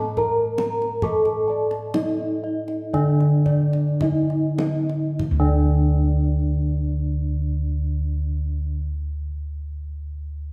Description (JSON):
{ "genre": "Javanese gamelan", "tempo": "48-74 BPM", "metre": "4/4", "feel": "straight", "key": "unclear", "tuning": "A4 = 442 Hz", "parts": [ { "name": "gamelan-type bronze metallophone", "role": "melody", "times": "0.0-8.8 s", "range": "D4 to Bb4-20c", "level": "-28 LUFS", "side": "equal", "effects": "none" }, { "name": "gamelan-type bronze metallophone", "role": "accompaniment", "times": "0.0-8.8 s", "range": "D3 to A3-30c", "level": "-27 LUFS", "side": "equal", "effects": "none" }, { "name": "gamelan-type bossed gongs", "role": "arpeggios", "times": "0.0-8.8 s", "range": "D5 to Bb5-20c", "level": "-37 LUFS", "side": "equal", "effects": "none" }, { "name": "gamelan-type bronze metallophone", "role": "arpeggios", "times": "0.0-8.9 s", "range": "D5 to Bb5-20c", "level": "-36 LUFS", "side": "equal", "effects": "none" }, { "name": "gamelan-type bossed gongs", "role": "bass", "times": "0.0-8.7 s", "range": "D2 to A4-30c", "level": "-27 LUFS", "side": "equal", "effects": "none" }, { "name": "kendang", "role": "percussion", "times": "0.2-5.8 s", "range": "none", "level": "-35 LUFS", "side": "equal", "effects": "none" } ], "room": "wet recital hall reverb, RT60 1.6 s", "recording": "recorded in a church or concert hall", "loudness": "-22 LUFS", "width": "mono", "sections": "0.0-5.2 A section; 5.2-10.2 B section", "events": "slowing down 0.0-5.2", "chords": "none" }